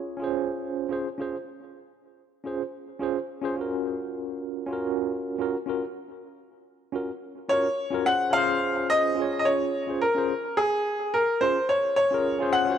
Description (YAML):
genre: chillout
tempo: 107 BPM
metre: 4/4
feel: straight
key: unclear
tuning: A4 = 440 Hz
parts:
  - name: tine electric piano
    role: accompaniment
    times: 0.0-12.8 s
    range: Db4 to Db5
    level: -28 LUFS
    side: moving between left 3 dB and right 8 dB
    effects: slow stereo tremolo, auto-pan, analog delay
  - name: bright baby grand piano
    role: melody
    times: 7.5-12.8 s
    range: Ab4 to Gb5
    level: -23 LUFS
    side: left 1 dB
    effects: analog delay
room: moderate lush hall reverb, RT60 2.4 s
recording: dry, gritty hardware recording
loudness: -24 LUFS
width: side -9 dB against mid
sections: 0.0-8.3 A section; 8.3-12.8 B section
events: none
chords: 0.0 Gbmaj9#11/Db